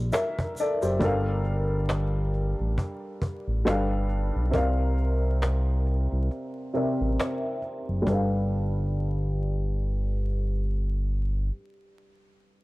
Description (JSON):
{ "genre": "lo-fi hip hop", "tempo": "68 BPM", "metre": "4/4", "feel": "swing 57% on 16ths", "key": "G dorian", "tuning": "A4 = 441 Hz", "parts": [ { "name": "dark upright piano", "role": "accompaniment", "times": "0.0-12.6 s", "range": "C3 to F5", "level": "-29 LUFS", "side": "equal", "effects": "cassette tape, low-pass filter" }, { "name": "smooth gliding synth bass", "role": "bass", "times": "0.0-11.5 s", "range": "F#1 to C2", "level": "-25 LUFS", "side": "equal", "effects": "none" }, { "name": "cajon", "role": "drums", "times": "0.1-8.3 s", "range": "none", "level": "-30 LUFS", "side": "equal", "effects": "none" }, { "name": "egg shaker", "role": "percussion", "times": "0.1-1.0 s", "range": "none", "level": "-46 LUFS", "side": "right 1 dB", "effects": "none" } ], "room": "studio ambience", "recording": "dry, gritty hardware recording, transformer saturation, vinyl crackle", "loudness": "-24 LUFS", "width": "side -20 dB against mid", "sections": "0.0-1.0 A section; 1.0-8.1 B section; 8.1-11.6 C section", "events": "filter sweep on upright piano 1.0-8.1; break 6.3-8.1", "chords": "0.0 Gm11; 1.0 Gm9; 3.7 G9; 4.5 C9sus4; 8.1 G9" }